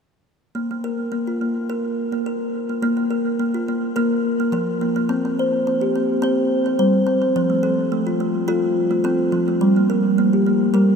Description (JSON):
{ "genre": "world meditative", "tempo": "106 BPM", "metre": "4/4", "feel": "straight", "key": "unclear", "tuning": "A4 = 439 Hz", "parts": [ { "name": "kalimba", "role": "solo", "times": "0.6-11.0 s", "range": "F3 to C5", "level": "-18 LUFS", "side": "equal", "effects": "diffuse ambient delay" } ], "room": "wet huge ambient reverb, RT60 7.8 s", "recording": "in a vast, echoing space", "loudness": "-18 LUFS", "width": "side -6 dB against mid", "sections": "0.5-2.8 A section; 2.8-11.0 B section", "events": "none", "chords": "0.5 Bb5; 5.1 C5; 7.4 F; 9.6 Gm" }